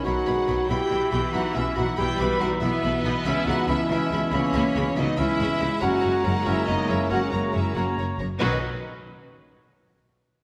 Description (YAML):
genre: cinematic, heroic adventure film score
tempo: 93 BPM (dotted quarters)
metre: 12/8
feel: straight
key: B major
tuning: A4 = 440 Hz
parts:
  - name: clear symphonic violin section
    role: melody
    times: 0.0-8.6 s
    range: D#4 to B5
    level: -38 LUFS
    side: equal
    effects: none
  - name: bright flute section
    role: second line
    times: 0.0-8.7 s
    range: D#5 to B5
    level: -36 LUFS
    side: equal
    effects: none
  - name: clear clarinet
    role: second line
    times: 0.0-8.6 s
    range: A#3 to B4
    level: -35 LUFS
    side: equal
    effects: none
  - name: warm oboe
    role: second line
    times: 0.0-8.6 s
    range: C#5 to E5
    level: -36 LUFS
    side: equal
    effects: none
  - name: clear symphonic viola section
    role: accompaniment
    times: 0.0-8.6 s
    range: E3 to C#4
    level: -34 LUFS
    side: equal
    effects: none
  - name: mellow trombone section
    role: sustained chords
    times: 0.0-8.6 s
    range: B2 to C#4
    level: -35 LUFS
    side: equal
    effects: none
  - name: warm French horn section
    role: sustained chords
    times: 0.0-8.6 s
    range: C#4 to B4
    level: -29 LUFS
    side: equal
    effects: none
  - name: warm studio violin section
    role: second line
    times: 0.1-8.7 s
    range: D#4 to B5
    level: -39 LUFS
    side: equal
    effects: none
  - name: clear symphonic cello section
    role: bass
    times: 0.1-8.6 s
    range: F#2 to C#3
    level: -33 LUFS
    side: equal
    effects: none
  - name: rich symphonic double bass section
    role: bass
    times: 0.1-8.6 s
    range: F#1 to C#2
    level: -33 LUFS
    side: equal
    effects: none
room: wet scoring stage reverb, RT60 1.9 s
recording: none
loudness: -24 LUFS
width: mono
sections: 0.0-8.4 A section; 8.4-10.4 B section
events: none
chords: 0.0 Badd9; 0.7 Em/B; 3.3 C#m7; 5.8 F#; 8.4 Badd9